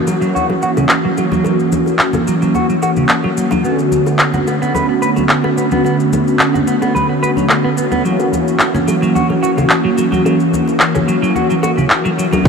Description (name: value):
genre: nu-disco, nu disco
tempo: 109 BPM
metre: 4/4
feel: straight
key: unclear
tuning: A4 = 440 Hz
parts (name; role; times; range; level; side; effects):
- mellow synth brass; accompaniment; 0.0-12.5 s; D3 to F#4; -14 LUFS; equal; chorus, phaser, vintage 12-bit sampler grit, sidechain pumping, tape echo
- clean electric guitar; riff; 0.1-12.5 s; C#3 to B4; -19 LUFS; right 2 dB; wide subtle chorus, low-pass filter, tape echo
- bongos, maracas and congas; percussion; 0.1-12.5 s; none; -23 LUFS; left 4 dB; none
- house drum kit; drums; 0.9-12.5 s; crash cymbal, handclaps, hi-hat, shaker; -19 LUFS; equal; studio ambience
- modern bright fingered electric bass; bass; 12.5 s; B1; -23 LUFS; equal; none
- electronic kick drum; drums; 12.5 s; none; -7 LUFS; equal; studio ambience
room: moderate huge ambient reverb, RT60 8.2 s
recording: none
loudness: -12 LUFS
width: side -5 dB against mid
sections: 0.0-12.5 A section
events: none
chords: 0.0 F#7; 3.6 Bm9; 8.1 F#7